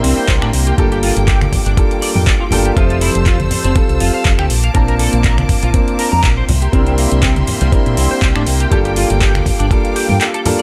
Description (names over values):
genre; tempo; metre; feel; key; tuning
nu-disco, nu disco; 121 BPM; 4/4; swing 55% on 16ths; unclear; A4 = 440 Hz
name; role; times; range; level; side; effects
clear grand piano; accompaniment; 0.0-10.6 s; F3 to A5; -21 LUFS; equal; tape echo
bright studio string section; sustained chords; 0.0-10.6 s; Bb3 to E6; -26 LUFS; equal; sidechain pumping
electric guitar at the edge of break-up; riff; 0.0-10.6 s; G3 to Bb5; -24 LUFS; equal; analog chorus, tape echo
fingered electric bass with an envelope filter; bass; 0.0-10.2 s; F1 to Bb2; -18 LUFS; equal; none
pop drum kit; drums; 0.0-10.6 s; finger snaps, handclaps, hi-hat; -23 LUFS; equal; overdrive
electronic kick drum; drums; 0.3-9.8 s; none; -18 LUFS; equal; none
congas; percussion; 1.4-10.6 s; none; -23 LUFS; equal; none
room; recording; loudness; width
studio ambience; none; -14 LUFS; mono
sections
0.0-10.6 A section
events
kick drops out 10.2-10.6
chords
0.0 C7; 0.8 Gm7; 2.8 Fmaj7; 4.5 Bbmaj7; 6.5 C7; 8.7 Gm7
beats
0.29 | 0.78 1.28 1.77 2.27 | 2.77 3.26 3.76 4.25 | 4.75 5.25 5.74 6.24 | 6.73 7.23 7.72 8.22 | 8.72 9.21 9.71 10.20